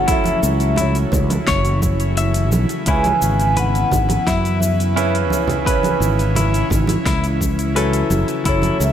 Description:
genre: sunset chillout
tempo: 86 BPM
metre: 4/4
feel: straight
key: F# minor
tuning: A4 = 440 Hz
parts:
  - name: vibraphone with medium mallets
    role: melody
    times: 0.0-8.9 s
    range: C#5 to G#5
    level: -23 LUFS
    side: left 1 dB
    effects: ping-pong delay
  - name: bright grand piano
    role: accompaniment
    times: 0.0-8.9 s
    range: C#3 to B4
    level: -24 LUFS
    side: moving between left 4 dB and right 11 dB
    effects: auto-pan, tape echo
  - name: airy breathy pad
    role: sustained chords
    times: 0.0-8.9 s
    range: C#3 to E4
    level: -25 LUFS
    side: equal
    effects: chorus
  - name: fretless electric bass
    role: bass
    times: 0.0-8.9 s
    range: F#1 to F#2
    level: -19 LUFS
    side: equal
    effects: lush chorus
  - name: semi-hollow electric guitar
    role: arpeggios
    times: 0.1-8.8 s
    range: E4 to E5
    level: -25 LUFS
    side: left 4 dB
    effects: tape echo
  - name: deep house drum kit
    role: drums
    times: 0.1-8.9 s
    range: cabasa, hi-hat, snare drum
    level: -27 LUFS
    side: left 1 dB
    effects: studio reverb
  - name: electronic kick drum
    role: drums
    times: 0.1-8.6 s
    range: none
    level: -22 LUFS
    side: equal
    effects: studio reverb
  - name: congas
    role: percussion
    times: 0.2-8.8 s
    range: none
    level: -26 LUFS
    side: right 4 dB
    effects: none
room: light reverb, digital ambience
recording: none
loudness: -15 LUFS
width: side -10 dB against mid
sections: 0.0-8.9 A section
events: none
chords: 0.0 F#m7; 2.9 C#m7; 8.1 F#m7

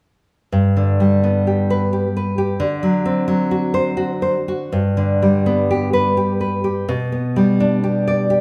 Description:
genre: romantic piece for solo classical guitar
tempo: 85 BPM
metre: 3/4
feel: uneven beats, rubato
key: G major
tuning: A4 = 441 Hz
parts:
  - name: nylon-string guitar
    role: solo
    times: 0.5-8.4 s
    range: G2 to D5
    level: -18 LUFS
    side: equal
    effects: none
room: wet recital hall reverb, RT60 1.4 s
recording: recorded in a church or concert hall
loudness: -18 LUFS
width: mono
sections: 0.5-4.7 A section; 4.7-8.4 B section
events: none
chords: 0.5 G; 2.6 D7; 4.7 G; 6.9 G/B

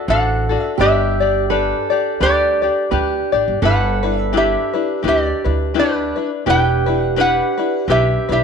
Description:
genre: Hawaiian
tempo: 85 BPM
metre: 4/4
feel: swing 58% on 8ths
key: G major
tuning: A4 = 438 Hz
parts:
  - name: lap resonator guitar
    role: melody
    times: 0.0-8.4 s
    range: D4 to G5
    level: -18 LUFS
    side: right 1 dB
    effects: none
  - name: fingerpicked steel-string acoustic guitar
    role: second line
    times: 0.0-8.4 s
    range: G4 to A4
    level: -23 LUFS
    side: right 11 dB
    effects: none
  - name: tenor ukulele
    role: accompaniment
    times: 0.0-8.4 s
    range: D4 to D5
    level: -20 LUFS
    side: left 10 dB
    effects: none
  - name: upright bass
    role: bass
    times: 0.1-8.4 s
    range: E1 to D2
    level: -21 LUFS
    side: right 2 dB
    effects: none
room: light reverb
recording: 1960s-style stereo with parts hard left and right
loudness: -14 LUFS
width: side -6 dB against mid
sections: 0.0-3.6 A section; 3.6-8.4 B section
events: none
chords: 0.0 D7; 0.8 G; 3.6 G6; 6.5 Em7

